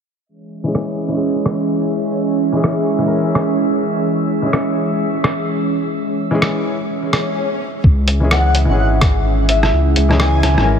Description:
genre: future garage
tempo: 127 BPM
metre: 4/4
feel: swing 60% on 16ths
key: C# dorian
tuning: A4 = 439 Hz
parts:
  - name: warbly tape-like pad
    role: sustained chords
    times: 0.5-10.8 s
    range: E3 to E5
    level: -19 LUFS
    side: right 2 dB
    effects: chorus, built-in reverb, vintage 12-bit sampler grit, sidechain pumping
  - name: drifting glass-harmonics texture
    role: texture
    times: 1.4-7.4 s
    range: E5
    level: -29 LUFS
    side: right 1 dB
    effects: chorus, built-in reverb
  - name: felt-muted upright piano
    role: accompaniment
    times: 0.6-10.8 s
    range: E3 to A#4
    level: -22 LUFS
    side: left 2 dB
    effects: sidechain pumping, low-pass filter, ping-pong delay
  - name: lo-fi sampler-style drum kit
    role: drums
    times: 0.7-10.7 s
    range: hi-hat, rim click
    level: -20 LUFS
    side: equal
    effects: none
  - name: swell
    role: sound effects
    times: 7.0-7.8 s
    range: none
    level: -25 LUFS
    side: left 3 dB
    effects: none
  - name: dark detuned saw bass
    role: bass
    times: 7.8-10.8 s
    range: G#1 to C#2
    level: -15 LUFS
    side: equal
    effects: sidechain pumping
  - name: electronic kick drum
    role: drums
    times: 7.8-9.1 s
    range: none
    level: -13 LUFS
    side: equal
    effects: none
  - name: breathy flute-like synth lead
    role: melody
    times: 8.3-10.7 s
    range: E5 to G#5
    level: -20 LUFS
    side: left 2 dB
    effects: ensemble chorus, ping-pong delay
room: moderate huge ambient reverb, RT60 4.2 s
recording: low-pass filter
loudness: -14 LUFS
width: side -7 dB against mid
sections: 0.3-7.8 A section; 7.8-10.8 B section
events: filter sweep on felt piano 0.3-7.8; filter sweep 0.3-7.8; swell 7.0-7.8; break 7.4-7.8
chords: 0.3 C#m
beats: | 0.28 0.75 1.23 1.70 | 2.17 2.64 3.12 3.59 | 4.06 4.53 5.01 5.48 | 5.95 6.42 6.90 7.37 | 7.84 8.31 8.79 9.26 | 9.73 10.20 10.68

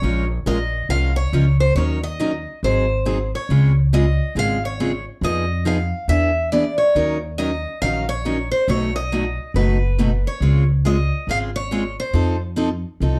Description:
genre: acoustic string swing (jazz manouche)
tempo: 139 BPM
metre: 4/4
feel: swing 62% on 8ths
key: Bb minor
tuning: A4 = 440 Hz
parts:
  - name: picked steel-string acoustic guitar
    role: melody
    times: 0.0-12.4 s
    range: B4 to F5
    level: -26 LUFS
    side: equal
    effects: none
  - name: picked steel-string acoustic guitar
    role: accompaniment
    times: 0.0-13.2 s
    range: B2 to Bb4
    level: -26 LUFS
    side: equal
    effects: none
  - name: upright bass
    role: bass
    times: 0.0-13.2 s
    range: F#1 to F2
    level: -22 LUFS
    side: equal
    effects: none
room: moderate studio reverb, RT60 0.6 s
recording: dark, warm production, faint mains hum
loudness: -20 LUFS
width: mono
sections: 0.0-13.2 A section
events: none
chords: 0.0 Bbm7; 1.8 Ebm7; 2.6 Ab7; 3.5 Dbmaj7; 5.2 Fm7b5; 6.1 E7; 7.0 Ebm7; 8.7 B7; 10.4 Dbmaj7; 12.1 F7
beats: | 0.03 0.46 0.89 1.33 | 1.76 2.19 2.63 3.06 | 3.49 3.92 4.36 4.79 | 5.22 5.66 6.09 6.52 | 6.95 7.39 7.82 8.25 | 8.68 9.12 9.55 9.98 | 10.41 10.85 11.28 11.71 | 12.14 12.58 13.01

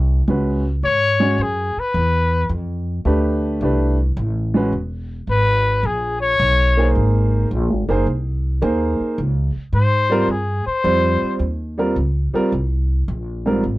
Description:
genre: jazz, small-group swing and bop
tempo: 108 BPM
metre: 4/4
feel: swing 68% on 8ths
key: unclear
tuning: A4 = 440 Hz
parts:
  - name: upright bass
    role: bass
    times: 0.0-13.8 s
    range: E1 to Ab2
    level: -19 LUFS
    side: equal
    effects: none
  - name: warm grand piano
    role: accompaniment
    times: 0.3-13.6 s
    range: Ab2 to Db5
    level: -19 LUFS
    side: right 1 dB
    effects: none
  - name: clear trumpet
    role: melody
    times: 0.8-11.4 s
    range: Ab4 to Db5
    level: -18 LUFS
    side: left 2 dB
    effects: none
room: little or no reverb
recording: dry, close 1970s-style studio recording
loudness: -16 LUFS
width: side -18 dB against mid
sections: 0.0-13.6 A section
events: none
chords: 0.3 Dbm7; 2.5 Fadd9; 4.7 E; 6.9 Ab; 9.2 Dbmaj7; 11.4 Eb7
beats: | 0.28 0.83 1.39 1.94 | 2.50 3.06 3.61 4.17 | 4.72 5.28 5.84 6.39 | 6.95 7.50 8.06 8.62 | 9.17 9.73 10.29 10.84 | 11.40 11.96 12.52 13.07 | 13.63

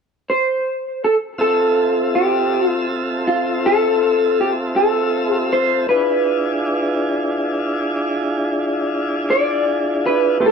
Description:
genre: blues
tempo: 53 BPM (dotted quarters)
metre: 12/8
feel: straight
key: unclear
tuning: A4 = 440 Hz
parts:
  - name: electric guitar through a small old amp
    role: melody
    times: 0.3-10.5 s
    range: F4 to D5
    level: -17 LUFS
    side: equal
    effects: lush chorus
  - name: tonewheel organ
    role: sustained chords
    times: 1.4-10.5 s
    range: C4 to E5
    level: -20 LUFS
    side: equal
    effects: slow rotary speaker
  - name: bright grand piano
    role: accompaniment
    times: 10.4-10.5 s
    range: A3 to C5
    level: -19 LUFS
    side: right 3 dB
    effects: none
room: wet studio reverb, RT60 0.8 s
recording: dark, warm production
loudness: -16 LUFS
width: side -6 dB against mid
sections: 0.0-1.4 A section; 1.4-10.5 B section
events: none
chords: 0.0 N.C.; 1.4 Fmaj7; 5.9 E7b9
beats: 0.24 | 1.38 2.51 3.64 4.77 | 5.90 7.03 8.16 9.29 | 10.42

